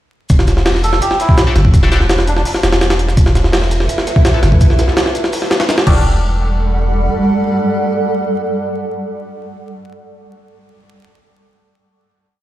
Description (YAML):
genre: drum and bass, jungle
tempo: 167 BPM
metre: 4/4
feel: straight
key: E minor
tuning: A4 = 442 Hz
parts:
  - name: saturated sub bass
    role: bass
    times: 0.3-7.1 s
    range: E1 to G1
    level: -14 LUFS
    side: equal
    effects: none
  - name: crunchy breakbeat drum kit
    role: drums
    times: 0.3-5.8 s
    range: hi-hat, shaker, snare drum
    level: -28 LUFS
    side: left 4 dB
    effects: high-pass filter on hats, high-pass filter on snare, high-pass filter on perc, high-pass filter on room
  - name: jungle sampler-style drum kit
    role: drums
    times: 0.3-5.9 s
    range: crash cymbal, hi-hat, kick drum, snare drum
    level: -12 LUFS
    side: equal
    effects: none
  - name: melodica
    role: melody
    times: 0.8-2.4 s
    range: D4 to A4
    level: -20 LUFS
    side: right 1 dB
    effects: dub echo
  - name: band-passed chord stab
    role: stabs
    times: 1.5-2.0, 4.3-8.9 s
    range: B3 to A4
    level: -25 LUFS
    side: left 2 dB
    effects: phaser, dub echo
  - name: granular cloud pad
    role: sustained chords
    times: 3.6-8.9 s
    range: G3 to F#5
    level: -18 LUFS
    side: right 1 dB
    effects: built-in reverb, vintage 12-bit sampler grit
room: light reverb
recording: played on a big sound system in a bare room, stone room reverb, vinyl crackle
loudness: -11 LUFS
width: side -14 dB against mid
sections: 0.3-6.0 drop; 6.0-8.9 final hit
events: drop 0.3-6.0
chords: 0.3 Em11; 3.2 Asus2/E; 5.9 Em11